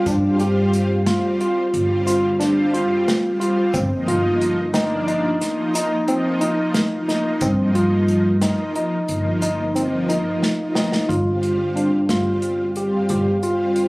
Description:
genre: progressive instrumental, band music in an uneven meter.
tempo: 180 BPM (eighths).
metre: 11/8.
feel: straight.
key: G minor.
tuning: A4 = 442 Hz.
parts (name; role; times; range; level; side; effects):
analog string pad; accompaniment; 0.0-13.9 s; F3 to F4; -24 LUFS; equal; ensemble chorus.
barky tine electric piano; arpeggios; 0.0-13.9 s; C4 to G4; -20 LUFS; equal; none.
upright bass; bass; 0.1-13.9 s; G1 to G2; -22 LUFS; equal; none.
unplugged drum kit; drums; 0.1-13.9 s; hi-hat, kick drum, snare drum; -25 LUFS; equal; none.
tube shaker; percussion; 0.1-10.3 s; none; -35 LUFS; equal; none.
room: studio ambience.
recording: recorded on a phone in the room, club reverb, compression.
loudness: -17 LUFS.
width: side -23 dB against mid.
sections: 0.0-11.1 A section; 11.1-13.9 B section.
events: drum fill 10.4-11.1.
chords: 0.0 G5; 3.7 Cm/G; 11.1 G5.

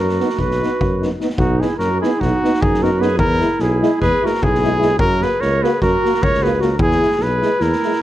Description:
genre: balkan folk, Balkan brass band.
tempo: 299 BPM (eighths).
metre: 9/8.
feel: straight.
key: B major.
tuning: A4 = 439 Hz.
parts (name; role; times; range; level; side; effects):
mellow cornet; melody; 0.0-8.0 s; F#4 to C#5; -20 LUFS; left 1 dB; none.
warm clarinet; second line; 0.0-8.0 s; D#4 to A#4; -21 LUFS; right 4 dB; none.
mellow tuba; bass; 0.0-7.7 s; B1 to F#2; -21 LUFS; equal; none.
street-band drum kit; percussion; 0.1-8.0 s; kick drum, snare drum; -23 LUFS; equal; none.
mellow euphonium; accompaniment; 0.2-7.9 s; G#3 to B3; -25 LUFS; right 5 dB; none.
warm French horn; accompaniment; 0.2-7.9 s; D#4 to F#4; -25 LUFS; left 7 dB; none.
room: light reverb.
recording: dark, warm production.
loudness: -14 LUFS.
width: side -13 dB against mid.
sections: 0.0-1.4 A section; 1.4-8.0 B section.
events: none.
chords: 0.0 B; 3.2 E; 5.0 F#; 6.8 E.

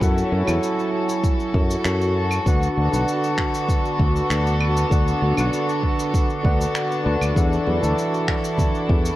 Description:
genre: sunset chillout.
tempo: 98 BPM.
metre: 4/4.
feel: straight.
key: D major.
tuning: A4 = 440 Hz.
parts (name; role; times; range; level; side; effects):
overdriven tine electric piano; accompaniment; 0.0-9.2 s; D3 to A5; -24 LUFS; equal; auto-pan, vintage 12-bit sampler grit, tape echo.
warm studio string section; sustained chords; 0.0-9.2 s; B3 to A4; -25 LUFS; equal; none.
sustaining fretless electric bass; bass; 0.0-9.1 s; B1 to F#2; -22 LUFS; equal; none.
electronic cabasa, claves and finger snaps; drums; 0.0-9.2 s; none; -30 LUFS; equal; none.
electronic kick drum; drums; 0.0-9.0 s; none; -21 LUFS; equal; none.
congas; percussion; 7.7-8.7 s; none; -30 LUFS; right 2 dB; none.
room: moderate lush hall reverb, RT60 1.9 s.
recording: worn, warbling old tape, cassette tape, warbly pitch drift.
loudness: -18 LUFS.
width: side -15 dB against mid.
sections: 0.0-9.2 A section.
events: none.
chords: 0.0 F#m7; 2.5 D6; 7.4 E9sus4.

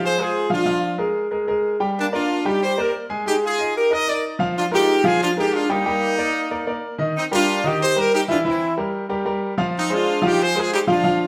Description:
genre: latin.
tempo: 185 BPM.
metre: 4/4.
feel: straight.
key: Eb major.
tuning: A4 = 442 Hz.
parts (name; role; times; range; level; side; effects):
brilliant horn section; melody; 0.0-11.3 s; Bb3 to Eb5; -22 LUFS; equal; none.
bright concert grand piano; accompaniment; 0.0-11.3 s; Eb3 to Ab5; -24 LUFS; equal; none.
room: wet stone room reverb, RT60 0.9 s.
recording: band playing live in one room.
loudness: -21 LUFS.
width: mono.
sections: 0.0-7.2 A section; 7.2-11.3 A section.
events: none.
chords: 0.0 Fm; 0.7 Bb7; 2.0 Ebmaj7 (rootless); 3.3 Absus2; 4.6 Bb7; 5.9 Ebmaj7; 7.2 Eb; 8.4 C7; 9.7 Fm7.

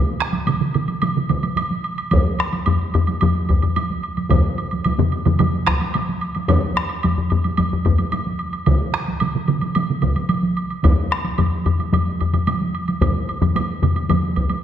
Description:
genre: japanese traditional, taiko drum ensemble.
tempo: 110 BPM.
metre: 4/4.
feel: straight.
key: none.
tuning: none.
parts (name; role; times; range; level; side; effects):
taiko ensemble; percussion; 0.2-14.2 s; none; -23 LUFS; right 4 dB; none.
woodblock; percussion; 0.2-14.6 s; none; -27 LUFS; right 3 dB; none.
taiko ensemble; percussion; 0.3-14.6 s; none; -24 LUFS; right 2 dB; none.
taiko ensemble; percussion; 1.3-14.5 s; none; -22 LUFS; equal; none.
solo taiko drums; percussion; 2.1-14.2 s; none; -20 LUFS; left 3 dB; none.
room: wet recital hall reverb, RT60 1.9 s.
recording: dark, warm production.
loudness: -17 LUFS.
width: side -10 dB against mid.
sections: 0.0-14.6 A section.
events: none.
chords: none.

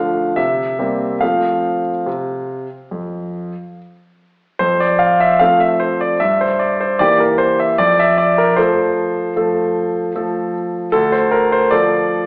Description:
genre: classical-period piano sonatina.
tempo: 70-77 BPM.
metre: 4/4.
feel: rubato.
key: F major.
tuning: A4 = 443 Hz.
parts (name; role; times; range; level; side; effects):
clear concert grand piano; solo; 0.0-12.3 s; D2 to F5; -16 LUFS; equal; none.
room: wet recital hall reverb, RT60 1.5 s.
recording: recorded in a church or concert hall, AM radio sound.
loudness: -16 LUFS.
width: mono.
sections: 0.0-4.6 A section; 4.6-12.3 B section.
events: none.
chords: 0.4 C7; 1.2 F; 6.2 Edim/G; 7.8 F; 10.9 Dm.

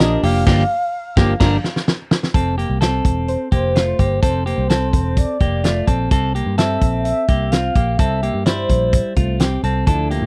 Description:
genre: jangly indie pop.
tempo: 128 BPM.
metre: 4/4.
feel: straight.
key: F major.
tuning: A4 = 440 Hz.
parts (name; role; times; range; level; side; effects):
warm velvety synth lead; melody; 0.0-9.4 s; C5 to F5; -25 LUFS; equal; chorus, slapback echo.
glockenspiel with soft plastic mallets; second line; 0.0-0.5 s; none; barely audible; none; none.
fingerpicked plugged-in steel-string acoustic guitar; accompaniment; 0.0-1.6, 9.9-10.3 s; G2 to G4; -24 LUFS; equal; none.
clean electric guitar; arpeggios; 0.0-10.3 s; G3 to Bb4; -24 LUFS; equal; slapback echo.
vintage muted picked electric bass; bass; 0.0-10.3 s; E1 to A2; -23 LUFS; equal; none.
loose indie drum kit; drums; 0.0-10.2 s; crash cymbal, hi-hat, kick drum, snare drum; -19 LUFS; equal; none.
room: little or no reverb.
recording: dry, close 1970s-style studio recording.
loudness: -18 LUFS.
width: mono.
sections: 0.0-2.3 A section; 2.3-10.3 B section.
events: band accent 0.5-2.3; drum fill 1.4-2.3.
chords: 0.0 Gm7; 2.3 F; 6.1 C.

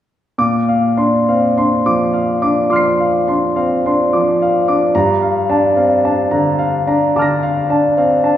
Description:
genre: classical, impressionist solo piano.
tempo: 50-56 BPM.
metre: 4/4.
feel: rubato.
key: Bb major.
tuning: A4 = 440 Hz.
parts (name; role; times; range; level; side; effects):
clear grand piano; solo; 0.4-8.4 s; G2 to C7; -12 LUFS; equal; none.
room: wet recital hall reverb, RT60 1.8 s.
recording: heard from further back in the room.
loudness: -12 LUFS.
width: side -11 dB against mid.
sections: 0.4-8.4 A section.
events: none.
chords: 0.4 Bbadd9; 4.9 Gm9.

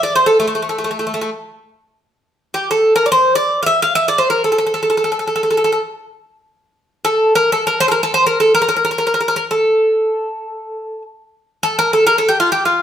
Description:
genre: Turkish makam ensemble.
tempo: free time.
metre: none.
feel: none.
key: A makam kurdi.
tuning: A4 = 439 Hz.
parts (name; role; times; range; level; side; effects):
Greek bouzouki; solo; 0.0-12.8 s; A3 to F5; -13 LUFS; equal; none.
room: wet stone room reverb, RT60 0.9 s.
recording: band playing live in one room.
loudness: -13 LUFS.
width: side -9 dB against mid.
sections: 0.0-2.1 A section; 2.1-12.8 A section.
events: none.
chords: none.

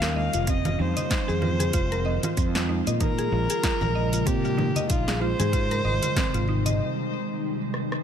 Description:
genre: organic downtempo.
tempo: 95 BPM.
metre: 4/4.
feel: swing 57% on 16ths.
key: F minor.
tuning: A4 = 436 Hz.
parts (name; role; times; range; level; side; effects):
rich kamancheh; melody; 0.0-6.8 s; F4 to F5; -30 LUFS; equal; ping-pong delay.
ethereal airy pad; sustained chords; 0.0-8.0 s; C3 to G4; -30 LUFS; right 1 dB; ensemble chorus, built-in reverb, sidechain pumping.
mallet-like synth pluck; arpeggios; 0.0-6.8 s; C4 to Eb5; -30 LUFS; equal; chorus, ping-pong delay.
fretless electric bass; bass; 0.0-6.8 s; F1 to Bb2; -27 LUFS; equal; sidechain pumping.
deep house drum kit; drums; 0.0-8.0 s; congas, hi-hat, rim click, shaker, snare drum; -30 LUFS; right 1 dB; none.
congas; percussion; 0.2-6.8 s; none; -36 LUFS; left 3 dB; none.
electronic kick drum; drums; 0.5-6.3 s; none; -27 LUFS; equal; none.
room: light reverb, digital ambience.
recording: none.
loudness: -22 LUFS.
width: side -8 dB against mid.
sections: 0.0-8.0 A section.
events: break 6.8-8.0; drum fill 7.7.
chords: 0.5 Fm7; 3.0 Bbm7; 5.5 Abmaj7.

